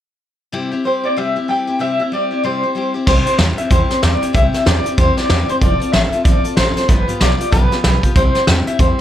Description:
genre	rockabilly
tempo	189 BPM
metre	4/4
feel	swing 61% on 8ths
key	C major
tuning	A4 = 442 Hz
part	picked steel-string acoustic guitar	accompaniment	0.5-9.0 s	G2 to A4	-22 LUFS	left 3 dB	none
part	electric guitar through a small old amp	melody	0.9-9.0 s	B4 to G5	-18 LUFS	left 1 dB	tremolo, plate reverb, analog delay
part	upright bass	bass	3.1-9.0 s	F1 to E2	-18 LUFS	equal	none
part	vintage brush drum kit	drums	3.1-9.0 s	crash cymbal, hi-hat, kick drum, snare drum	-15 LUFS	equal	none
room	light reverb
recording	none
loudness	-13 LUFS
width	side -11 dB against mid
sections	0.5-3.1 A section; 3.1-9.0 B section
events	none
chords	0.5 C; 5.6 F; 6.9 G7; 8.2 C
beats	| 0.53 0.84 1.16 1.48 | 1.80 2.12 2.44 2.75 | 3.07 3.39 3.71 4.03 | 4.34 4.66 4.98 5.30 | 5.62 5.94 6.25 6.57 | 6.89 7.21 7.53 7.84 | 8.16 8.48 8.79

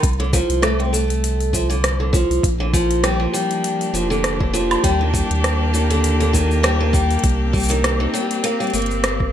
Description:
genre	folktronica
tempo	100 BPM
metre	4/4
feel	swing 56% on 16ths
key	unclear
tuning	A4 = 436 Hz
part	picked steel-string acoustic guitar	arpeggios	0.0-9.3 s	D3 to C4	-21 LUFS	equal	ping-pong delay
part	warm sub bass	bass	0.0-9.3 s	F1 to Eb2	-20 LUFS	equal	none
part	electronic kick drum	drums	0.0-9.3 s	none	-20 LUFS	equal	none
part	organic electronic drum kit	drums	0.0-9.2 s	hi-hat, rim click, shaker, woodblock	-24 LUFS	equal	none
part	clear string quartet	sustained chords	2.4-9.3 s	F3 to G4	-23 LUFS	left 2 dB	vintage 12-bit sampler grit
room	light reverb, digital ambience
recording	none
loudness	-16 LUFS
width	side -10 dB against mid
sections	0.0-9.3 A section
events	none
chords	0.0 F6/C; 2.4 Bb6; 4.8 Ebmaj7; 7.2 Cm7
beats	| 0.03 0.63 1.23 1.83 | 2.43 3.03 3.63 4.23 | 4.83 5.43 6.03 6.63 | 7.23 7.83 8.43 9.03

